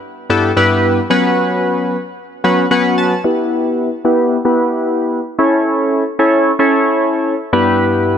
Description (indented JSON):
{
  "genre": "pop",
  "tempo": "112 BPM",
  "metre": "4/4",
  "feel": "straight",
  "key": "E dorian",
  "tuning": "A4 = 437 Hz",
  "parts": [
    { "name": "warm analog keys", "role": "solo", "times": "0.3-8.2 s", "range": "G2 to A5", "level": "-12 LUFS", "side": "equal", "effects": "chorus, low-pass filter" }
  ],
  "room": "light reverb",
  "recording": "none",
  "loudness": "-12 LUFS",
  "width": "side -8 dB against mid",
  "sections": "0.0-3.2 A section; 3.2-8.2 B section",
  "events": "synth keys fill 2.4-3.2; build-up 3.2-8.2; filter sweep on synth keys 3.2-8.2",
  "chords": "0.0 Em/G; 1.1 Bsus2/F#; 3.2 Em; 5.4 A; 7.5 Em/G"
}